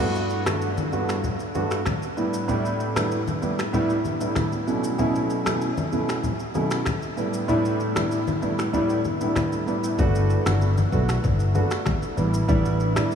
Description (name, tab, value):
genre	afrobeats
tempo	96 BPM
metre	4/4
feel	straight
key	A mixolydian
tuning	A4 = 436 Hz
part	warm grand piano	accompaniment	0.0-13.2 s	G2 to F#4	-24 LUFS	right 1 dB	analog chorus
part	deep house drum kit	drums	0.2-13.2 s	finger snaps, kick drum, rim click, shaker	-30 LUFS	equal	none
part	congas	percussion	0.5-13.1 s	none	-30 LUFS	left 3 dB	none
part	vintage muted fingered electric bass	bass	10.0-13.0 s	G1 to B1	-21 LUFS	left 1 dB	none
room	wet huge ambient reverb, RT60 7.8 s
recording	dreamy mix soaked in reverb, studio reverb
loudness	-21 LUFS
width	side -7 dB against mid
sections	0.0-13.2 A section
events	break 0.0-10.0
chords	0.0 Gmaj7; 2.2 A7sus4; 4.7 B7sus4; 7.2 A7sus4; 10.0 Gmaj7; 12.2 A7sus4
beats	0.61 1.24 1.86 | 2.49 3.11 3.74 4.36 | 4.99 5.61 6.24 6.86 | 7.49 8.11 8.74 9.36 | 9.99 10.61 11.24 11.86 | 12.49 13.11